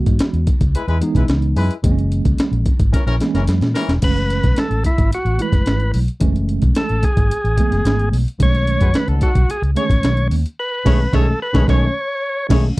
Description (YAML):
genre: funk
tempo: 110 BPM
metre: 4/4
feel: straight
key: unclear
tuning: A4 = 439 Hz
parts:
  - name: mellow tine electric piano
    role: stabs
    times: 0.0-12.8 s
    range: D3 to F#4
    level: -22 LUFS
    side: right 2 dB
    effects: medium stereo tremolo
  - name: vintage muted fingered electric bass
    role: bass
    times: 0.1-12.8 s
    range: E1 to A#2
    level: -18 LUFS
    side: equal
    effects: none
  - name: breakbeat sampler-style drum kit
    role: drums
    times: 0.1-12.8 s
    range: crash cymbal, hi-hat, kick drum, snare drum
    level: -17 LUFS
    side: equal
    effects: none
  - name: warm horn section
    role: second line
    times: 0.7-3.9, 8.8-12.6 s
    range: E3 to C#5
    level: -25 LUFS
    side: left 4 dB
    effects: none
  - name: overdriven tonewheel organ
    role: melody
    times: 4.0-12.5 s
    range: E4 to C#5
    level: -22 LUFS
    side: equal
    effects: slapback echo
room: little or no reverb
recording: dry, close 1970s-style studio recording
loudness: -14 LUFS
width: side -20 dB against mid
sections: 0.0-4.0 A section; 4.0-12.8 B section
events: drum fill 2.9-4.0; band accent 10.6-12.8; silent gap 12.2-12.8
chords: 0.0 C#m9; 1.8 F#9; 4.0 F#m9; 8.4 B13